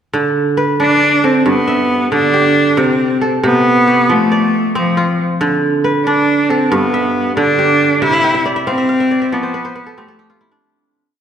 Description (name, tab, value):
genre	west african traditional, West African string and xylophone music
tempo	92 BPM (dotted quarters)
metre	12/8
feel	straight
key	D dorian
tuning	A4 = 436 Hz
part	kora	arpeggios	0.1-11.2 s	G2 to G5	-16 LUFS	right 2 dB	none
part	rich cello	melody	0.8-10.5 s	F3 to E4	-13 LUFS	equal	none
room	wet concert hall reverb, RT60 2.1 s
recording	recorded in a church or concert hall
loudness	-11 LUFS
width	side -8 dB against mid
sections	0.1-10.6 A section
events	fade-out 8.0-10.6; kora fill 8.0-10.6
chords	0.1 D5; 1.5 G; 2.8 C5; 4.1 F; 5.4 Dm; 6.7 G; 8.0 C; 9.3 F